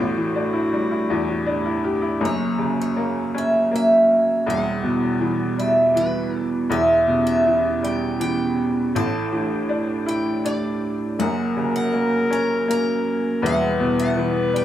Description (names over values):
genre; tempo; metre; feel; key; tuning
acoustic folk-pop ballad; 80 BPM; 3/4; straight; unclear; A4 = 440 Hz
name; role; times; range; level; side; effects
picked acoustic archtop guitar; melody; 0.0-14.6 s; B4 to A#5; -22 LUFS; right 1 dB; none
dark clarinet; second line; 0.0-2.2, 11.2-14.6 s; E4 to B4; -24 LUFS; left 2 dB; none
bright upright piano; accompaniment; 0.0-14.6 s; E1 to G4; -24 LUFS; left 3 dB; none
vibraphone with medium mallets; arpeggios; 0.0-14.6 s; G3 to G4; -24 LUFS; right 4 dB; none
room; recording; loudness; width
light reverb; band playing live in one room; -18 LUFS; side -12 dB against mid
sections
0.0-2.2 A section; 2.2-14.6 A section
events
none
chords
0.0 A7sus4; 2.2 F#; 4.5 Emadd9; 6.7 C#m7b5/E; 8.9 A7sus4; 11.2 F#; 13.4 Em